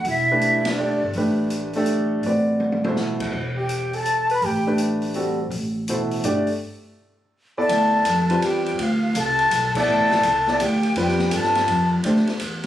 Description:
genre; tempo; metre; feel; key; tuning
modal jazz; 165 BPM; 3/4; swing 66% on 8ths; A dorian, D dorian from 7.7 s; A4 = 440 Hz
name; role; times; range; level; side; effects
breathy jazz flute; melody; 0.0-1.0, 3.6-4.8, 7.6-11.9 s; D5 to B5; -21 LUFS; left 1 dB; none
breathy alto saxophone; second line; 0.0-1.0, 3.6-4.8, 7.6-11.9 s; D4 to B4; -28 LUFS; equal; none
upright bass; bass; 0.0-12.7 s; E1 to G2; -25 LUFS; right 1 dB; none
open jazz drum kit; drums; 0.0-12.7 s; crash cymbal, hi-hat, kick drum, ride cymbal, snare drum, toms; -29 LUFS; equal; none
warm concert grand piano; accompaniment; 0.3-12.3 s; B2 to D5; -23 LUFS; equal; none
room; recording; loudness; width
moderate large studio reverb, RT60 1.2 s; recorded on a phone in the room, studio ambience, compression; -19 LUFS; side -12 dB against mid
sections
0.0-7.7 A section; 7.7-12.7 B section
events
band accent 0.6, 9.7; drum fill 2.6-3.0; break 6.6-7.7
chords
0.0 A9sus4; 7.7 Dm11

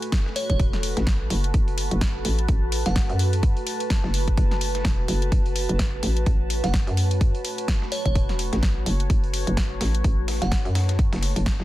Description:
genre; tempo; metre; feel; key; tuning
bass house; 127 BPM; 4/4; swing 58% on 16ths; F# minor; A4 = 439 Hz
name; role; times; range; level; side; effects
deep dark ambient pad; sustained chords; 0.0-11.6 s; A3 to C#5; -34 LUFS; left 2 dB; chorus, built-in reverb, sidechain pumping
dusty soul sampler-style drum kit; drums; 0.0-11.6 s; hi-hat, snare drum; -39 LUFS; right 2 dB; sidechain pumping on hats, high-pass filter on hats, high-pass filter on snare
house drum kit; drums; 0.0-11.6 s; hi-hat, snare drum; -30 LUFS; left 1 dB; none
warbly tape-like pad; texture; 0.0-11.6 s; F#4 to A5; -33 LUFS; right 3 dB; chorus, built-in reverb, phaser, sidechain pumping
electronic kick drum; drums; 0.1-11.6 s; none; -22 LUFS; equal; none
glassy synth bell; melody; 0.4-3.0, 6.6-10.6 s; C#5 to F#5; -32 LUFS; right 2 dB; chorus, digital delay
hollow knocking FM bass; bass; 0.5-11.6 s; E1 to F#2; -24 LUFS; equal; overdrive, sidechain pumping
room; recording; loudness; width
digital ambience; dense, heavily limited modern master; -20 LUFS; side -16 dB against mid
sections
0.0-11.6 A section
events
none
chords
0.0 F#m

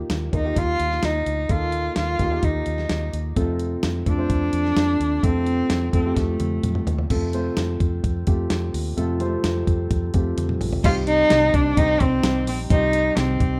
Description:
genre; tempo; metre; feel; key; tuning
piano-driven pop; 128 BPM; 4/4; straight; unclear; A4 = 437 Hz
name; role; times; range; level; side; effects
dark upright piano; accompaniment; 0.0-13.6 s; G2 to C5; -30 LUFS; equal; none
vintage muted fingered electric bass; bass; 0.1-13.6 s; Bb1 to F2; -28 LUFS; equal; none
dusty soul sampler-style drum kit; drums; 0.1-13.5 s; crash cymbal, hi-hat, kick drum, snare drum, toms; -26 LUFS; equal; none
rich cello; melody; 0.3-6.9, 10.8-13.6 s; A3 to F4; -24 LUFS; equal; none
twelve-string electric guitar; riff; 10.8-13.6 s; C3 to G4; -35 LUFS; equal; none
room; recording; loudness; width
little or no reverb; rough home demo mix; -22 LUFS; mono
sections
0.0-7.1 A section; 7.1-10.8 B section; 10.8-13.6 C section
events
drum fill 6.2-7.1, 10.4-10.8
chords
0.0 Ebadd9; 3.4 F; 10.8 Cm

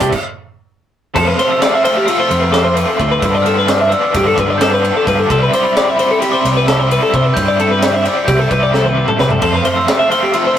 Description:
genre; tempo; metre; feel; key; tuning
math rock and midwest emo; 261 BPM (eighths); 9/8; straight; C major; A4 = 440 Hz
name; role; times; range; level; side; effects
twelve-string electric guitar; arpeggios; 0.0-10.6 s; F4 to E5; -15 LUFS; left 2 dB; none
raw garage guitar; riff; 0.0-10.6 s; F2 to G4; -18 LUFS; right 1 dB; overdrive, tremolo
picked electric bass; bass; 0.0-9.6 s; C2 to C3; -18 LUFS; equal; none
crisp fusion drum kit; drums; 0.0-10.4 s; crash cymbal, hi-hat, kick drum, ride cymbal, snare drum, toms; -18 LUFS; right 1 dB; none
glockenspiel with rubber mallets; melody; 1.2-10.6 s; B5 to G6; -20 LUFS; equal; none
room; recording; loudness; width
moderate booth ambience, RT60 0.3 s; rough rehearsal-room recording; -11 LUFS; side -10 dB against mid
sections
0.0-1.2 A section; 1.2-10.6 B section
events
stop 0.1-1.2; drum fill 8.7-9.4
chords
0.0 C5; 1.2 Fmaj7; 3.2 G7; 5.3 Cmaj9; 9.4 Fmaj7

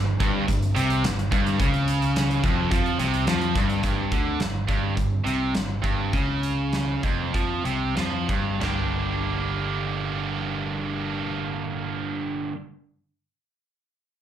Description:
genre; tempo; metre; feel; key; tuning
classic rock; 90-107 BPM; 4/4; straight; unclear; A4 = 440 Hz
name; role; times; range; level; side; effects
overdriven electric guitar; riff; 0.0-12.6 s; F2 to G3; -30 LUFS; left 7 dB; none
thick fuzz guitar; riff; 0.0-3.8 s; F2 to F3; -30 LUFS; left 1 dB; distortion
tight distorted guitar; riff; 0.0-12.6 s; F2 to G4; -27 LUFS; right 7 dB; distortion
picked electric bass; bass; 0.0-12.5 s; F1 to F2; -29 LUFS; equal; none
huge arena drum kit; drums; 0.2-8.8 s; china cymbal, hi-hat, kick drum, snare drum, toms; -27 LUFS; equal; none
room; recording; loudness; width
light reverb; live gig heard through the venue's PA, club reverb; -22 LUFS; side -10 dB against mid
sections
0.0-3.8 A section; 3.8-8.6 B section; 8.6-11.3 C section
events
slowing down 3.8-8.6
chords
0.0 N.C.; 3.8 G5; 8.6 Gm

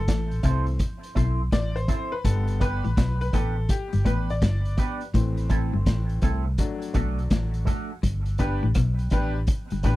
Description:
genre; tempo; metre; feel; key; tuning
roots reggae; 83 BPM; 4/4; swing 64% on 16ths; G major; A4 = 439 Hz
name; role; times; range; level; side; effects
semi-hollow electric guitar; riff; 0.0-10.0 s; G2 to C3; -28 LUFS; left 3 dB; spring reverb
bright upright piano; stabs; 0.0-10.0 s; D3 to D5; -32 LUFS; left 4 dB; none
vintage muted fingered electric bass; bass; 0.0-10.0 s; G1 to C2; -26 LUFS; equal; none
vintage drum kit; drums; 0.1-10.0 s; hi-hat, kick drum, rim click, snare drum; -25 LUFS; equal; none
electric guitar with an envelope filter; accompaniment; 0.4-10.0 s; A3 to C5; -34 LUFS; right 4 dB; wide subtle chorus, tape echo
room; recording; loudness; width
little or no reverb; none; -22 LUFS; side -17 dB against mid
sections
0.0-8.0 A section; 8.0-10.0 B section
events
upright piano solo 0.0-8.0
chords
0.0 Am; 2.3 G; 5.1 Am; 6.6 D; 8.0 G

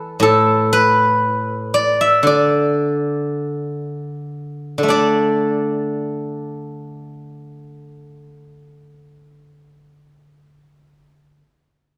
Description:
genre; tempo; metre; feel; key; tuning
chinese traditional, Chinese solo plucked strings; 37-62 BPM; 2/4; rubato; unclear; A4 = 440 Hz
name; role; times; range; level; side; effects
steel-string zither; solo; 0.0-11.4 s; A2 to E5; -18 LUFS; equal; none
room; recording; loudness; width
moderate scoring stage reverb, RT60 1.6 s; none; -17 LUFS; mono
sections
0.0-4.9 A section; 4.9-11.0 B section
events
slowing down 0.2-4.9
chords
none

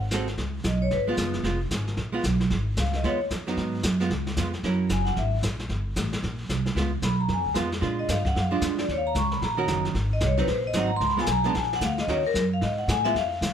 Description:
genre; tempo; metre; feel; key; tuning
jazz, small-group swing and bop; 226 BPM; 4/4; swing 61% on 8ths; Db mixolydian; A4 = 439 Hz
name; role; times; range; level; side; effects
upright bass; bass; 0.0-13.5 s; F1 to Bb2; -27 LUFS; right 1 dB; none
archtop guitar, miked and amplified; accompaniment; 0.1-13.1 s; Eb3 to Bb4; -30 LUFS; right 3 dB; none
jazz brush drum kit; drums; 0.1-13.5 s; brushed snare drum, hi-hat, kick drum, snare drum; -31 LUFS; equal; none
vibraphone with medium hard mallets; melody; 0.7-13.5 s; Bb4 to Db6; -27 LUFS; left 2 dB; none
room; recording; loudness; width
light reverb; none; -23 LUFS; side -8 dB against mid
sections
0.4-13.1 A section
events
vibraphone solo 0.4-13.5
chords
0.4 Db7; 3.6 Abm7; 4.1 Db7; 4.6 Gb7; 5.7 Gmadd9; 6.8 Db7; 7.8 Bb7; 8.9 Ebm7; 9.9 Ab7; 11.0 Db7; 11.5 Bb; 12.1 Ebm7; 12.6 Abm

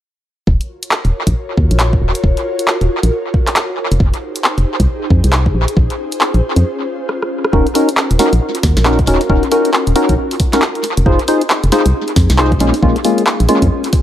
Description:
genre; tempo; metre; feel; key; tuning
UK garage, two-step garage; 136 BPM; 4/4; swing 61% on 16ths; Eb dorian; A4 = 438 Hz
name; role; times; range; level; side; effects
ethereal airy pad; sustained chords; 1.0-14.0 s; C4 to Db5; -22 LUFS; left 1 dB; ensemble chorus, built-in reverb, sidechain pumping
organ-like FM bass; bass; 0.5-13.7 s; Eb1 to F2; -13 LUFS; equal; none
electronic kick drum; drums; 0.5-14.0 s; none; -15 LUFS; equal; overdrive, small room ambience
punchy analog drum machine; drums; 0.6-14.0 s; handclaps, hi-hat, rim click, snare drum; -17 LUFS; equal; small room ambience, tape echo
percussive organ stab; stabs; 7.5-13.7 s; Ab3 to C5; -14 LUFS; left 1 dB; analog chorus, analog delay
room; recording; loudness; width
light reverb; echo-heavy mix, lossy compression artefacts; -12 LUFS; side -11 dB against mid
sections
0.5-7.5 A section; 7.5-14.0 B section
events
filter sweep on FM bass 0.5-7.5; break 6.6-7.5; drum fill 7.1-7.5; filter sweep on synth stab 7.5-14.0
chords
0.5 Ebm7; 3.8 Fm7; 5.5 Bbm7; 7.5 Ebm7; 10.8 Fm7; 12.6 Bbm7

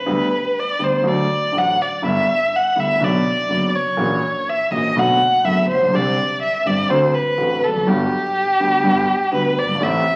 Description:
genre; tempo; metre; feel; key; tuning
tango; 123 BPM; 4/4; rubato; G major; A4 = 441 Hz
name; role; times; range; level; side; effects
rich violin; second line; 0.0-10.2 s; G4 to F#5; -20 LUFS; equal; none
warm concert grand piano; accompaniment; 0.1-10.0 s; F#1 to G4; -23 LUFS; equal; none
clear double bass; bass; 0.1-10.0 s; F1 to D2; -33 LUFS; equal; none
room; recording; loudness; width
wet large studio reverb, RT60 1.4 s; very old 78 rpm record, vinyl crackle; -18 LUFS; mono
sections
0.0-10.2 A section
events
violin solo 0.0-10.2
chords
0.1 G/D; 1.1 D; 2.0 G6; 3.0 Bm; 4.0 F#7/A#; 5.0 Bm7; 5.9 Csus2; 6.9 D7; 7.9 Gmaj7

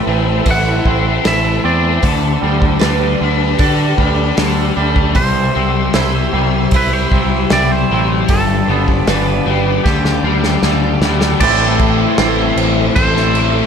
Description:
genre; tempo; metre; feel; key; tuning
rock, shoegaze and dream pop; 77 BPM; 4/4; straight; unclear; A4 = 443 Hz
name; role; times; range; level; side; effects
twangy electric guitar; melody; 0.0-13.7 s; G4 to F#5; -22 LUFS; right 1 dB; tape echo
string machine, full ensemble; sustained chords; 0.0-13.7 s; G4 to E6; -24 LUFS; equal; ensemble chorus
picked twelve-string acoustic guitar; arpeggios; 0.0-13.7 s; E4 to C5; -24 LUFS; right 9 dB; lush chorus, tape echo
biting overdriven guitar; riff; 0.0-13.7 s; G2 to G4; -18 LUFS; left 13 dB; analog chorus
twangy electric guitar; riff; 0.0-13.7 s; G2 to A4; -21 LUFS; right 12 dB; reverse reverb
growling picked electric bass; bass; 0.1-13.6 s; G1 to D3; -17 LUFS; equal; overdrive
loose indie drum kit; drums; 0.5-13.5 s; crash cymbal, hi-hat, kick drum, snare drum; -18 LUFS; equal; none
overdriven electric guitar; riff; 11.4-13.7 s; A2 to E4; -21 LUFS; equal; none
room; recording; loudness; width
light reverb, small room ambience; none; -11 LUFS; side -7 dB against mid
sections
0.0-11.4 A section; 11.4-13.7 B section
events
drum fill 9.8-11.4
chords
0.0 Amadd9; 2.0 Dsus4; 5.2 C; 8.3 G; 9.8 Dsus4; 11.4 Am

